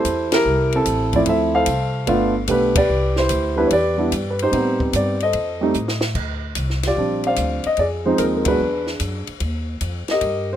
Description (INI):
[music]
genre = jazz piano trio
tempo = 148 BPM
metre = 4/4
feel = swing 67% on 8ths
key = Bb major from 6.2 s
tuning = A4 = 440 Hz
[part]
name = dark concert grand piano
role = melody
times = 0.0-10.6 s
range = F3 to F5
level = -18 LUFS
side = equal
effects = none
[part]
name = upright bass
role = bass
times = 0.0-10.6 s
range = G1 to A2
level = -25 LUFS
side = equal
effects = none
[part]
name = compact cocktail drum kit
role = drums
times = 0.0-10.3 s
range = crash cymbal, hi-hat, kick drum, ride cymbal, snare drum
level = -27 LUFS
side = left 1 dB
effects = none
[sound]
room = small room ambience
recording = rough home demo mix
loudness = -17 LUFS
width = side -11 dB against mid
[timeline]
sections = 0.0-6.2 A section; 6.2-10.6 B section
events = band accent 0.3, 2.7, 8.4; drum fill 5.7-6.2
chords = 0.0 Fmaj9 (rootless); 1.3 Dm9; 2.1 G9; 2.9 Cmaj9; 4.5 Am7b5; 5.3 F7; 6.2 Bb69; 7.8 Fm7; 8.6 E9; 9.4 Eb